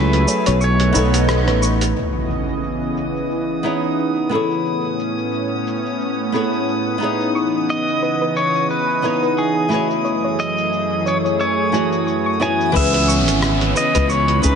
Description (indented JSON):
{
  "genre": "sunset chillout",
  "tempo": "89 BPM",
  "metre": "4/4",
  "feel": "swing 56% on 16ths",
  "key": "C# minor",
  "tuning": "A4 = 441 Hz",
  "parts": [
    { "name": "pedal steel guitar", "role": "melody", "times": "0.0-1.6, 7.7-14.6 s", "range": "G#4 to G#5", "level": "-21 LUFS", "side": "equal", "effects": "tape echo" },
    { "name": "nylon-string guitar", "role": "accompaniment", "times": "0.0-14.6 s", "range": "E3 to C#5", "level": "-22 LUFS", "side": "moving between left 4 dB and right 5 dB", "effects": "auto-pan, tape echo" },
    { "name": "lush unison pad", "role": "sustained chords", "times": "0.0-14.6 s", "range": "F#2 to D#5", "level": "-22 LUFS", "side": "right 1 dB", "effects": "chorus" },
    { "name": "sustaining fretless electric bass", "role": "bass", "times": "0.0-1.9, 12.8-14.6 s", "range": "G#1 to C#2", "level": "-18 LUFS", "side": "equal", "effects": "analog chorus" },
    { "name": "dusty soul sampler-style drum kit", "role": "drums", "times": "0.1-14.6 s", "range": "hi-hat, rim click, shaker", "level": "-26 LUFS", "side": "right 1 dB", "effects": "low-pass filter on snare, low-pass filter on hats, low-pass filter on perc, low-pass filter on room" },
    { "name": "soft round pluck", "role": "arpeggios", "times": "0.3-1.7, 7.4-14.2 s", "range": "B4 to E6", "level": "-26 LUFS", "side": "left 3 dB", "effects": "chorus, tape echo" },
    { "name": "impact and downlifter", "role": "sound effects", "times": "2.0-4.7, 12.8-14.6 s", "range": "none", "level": "-25 LUFS", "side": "equal", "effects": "none" },
    { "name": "drifting glass-harmonics texture", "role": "texture", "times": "2.7-14.6 s", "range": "B5 to D#6", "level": "-30 LUFS", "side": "equal", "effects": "chorus, built-in reverb" },
    { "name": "electronic kick drum", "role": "drums", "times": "12.8-14.6 s", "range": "none", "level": "-19 LUFS", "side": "equal", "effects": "none" }
  ],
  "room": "moderate lush hall reverb, RT60 2.1 s",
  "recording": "nothing above 10.7 kHz",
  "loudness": "-16 LUFS",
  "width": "side -6 dB against mid",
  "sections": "0.0-2.0 A section; 2.0-12.8 B section; 12.8-14.6 A section",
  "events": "kick drops out 0.6-2.0; band accent 1.3-1.6; impact 2.0-4.7",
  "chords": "0.0 F#m9; 0.6 B9; 2.0 C#m9; 4.7 Amaj9; 7.4 C#m9; 10.1 F#m9; 12.8 C#m7",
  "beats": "0.62 1.29 | 1.97 2.64 3.31 3.99 | 4.66 5.34 6.01 6.68 | 7.36 8.03 8.71 9.38 | 10.06 10.73 11.40 12.08 | 12.75 13.43 14.10"
}